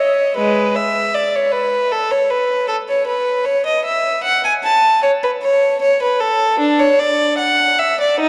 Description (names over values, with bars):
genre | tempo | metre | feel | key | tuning
classical, baroque-style suite movement for unaccompanied violin | 77 BPM | 4/4 | rubato | unclear | A4 = 440 Hz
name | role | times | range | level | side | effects
rich violin | solo | 0.0-8.3 s | G#3 to A5 | -16 LUFS | equal | none
room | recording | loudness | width
wet church reverb, RT60 3.6 s | dark, warm production | -16 LUFS | mono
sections
0.0-8.3 A section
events
none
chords
none